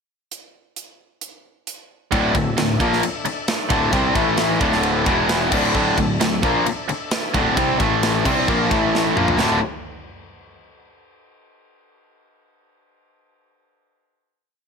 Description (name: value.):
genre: hard rock.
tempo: 132 BPM.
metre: 4/4.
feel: straight.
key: D minor.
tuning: A4 = 440 Hz.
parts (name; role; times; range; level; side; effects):
tight metal drum kit; drums; 0.3-9.5 s; crash cymbal, hi-hat, kick drum, ride cymbal, snare drum, splash cymbal, toms; -24 LUFS; right 1 dB; none.
overdriven tonewheel organ; sustained chords; 2.1-9.6 s; A3 to E5; -31 LUFS; equal; none.
high-gain distorted guitar; riff; 2.1-9.6 s; D2 to C4; -21 LUFS; left 10 dB; distortion.
tight distorted guitar; riff; 2.1-9.6 s; D2 to C4; -22 LUFS; right 13 dB; distortion.
fuzz picked electric bass; bass; 2.1-9.6 s; D1 to C2; -25 LUFS; right 1 dB; overdrive.
room: light reverb, small room reverb.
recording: none.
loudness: -17 LUFS.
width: side -5 dB against mid.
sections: 0.3-2.1 pickup bar; 2.1-9.4 riff; 9.4-11.2 final chord.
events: drum fill 8.9-9.4.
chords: 0.3 N.C.; 2.1 Dm; 4.2 A5; 4.6 D5; 5.1 E5; 5.5 Dm; 7.8 A5; 8.3 Dm; 8.7 A5; 9.2 Dm; 9.4 D5.